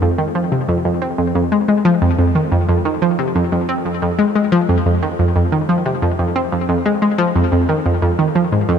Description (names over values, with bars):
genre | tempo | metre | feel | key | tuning
ambient | 90 BPM | 4/4 | straight | F minor | A4 = 440 Hz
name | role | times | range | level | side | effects
analog pluck | solo | 0.0-8.8 s | F2 to C4 | -14 LUFS | equal | chorus, ping-pong delay
room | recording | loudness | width
moderate huge ambient reverb, RT60 7.3 s | none | -14 LUFS | side -7 dB against mid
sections
0.0-8.8 A section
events
none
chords
none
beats
0.02 0.69 | 1.35 2.02 2.69 3.35 | 4.02 4.69 5.36 6.02 | 6.69 7.36 8.02 8.69